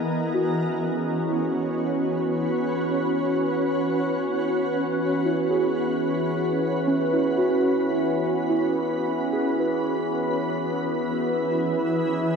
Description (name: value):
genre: ambient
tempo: free time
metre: none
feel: none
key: E major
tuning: A4 = 438 Hz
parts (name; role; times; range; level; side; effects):
- shimmering ambient pad; sustained chords; 0.0-12.4 s; E3 to F#5; -24 LUFS; right 1 dB; chorus, built-in reverb
- muted felt-like synth keys; arpeggios; 0.0-12.4 s; C#4 to B4; -28 LUFS; right 2 dB; chorus, ping-pong delay
- overtone-sweeping drone; drone; 0.0-12.4 s; E3 to B3; -29 LUFS; left 2 dB; chorus, built-in reverb, phaser
room: wet cathedral reverb, RT60 7.1 s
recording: dark, warm production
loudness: -22 LUFS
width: side -6 dB against mid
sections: 0.3-12.4 A section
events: none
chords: 0.3 Eadd9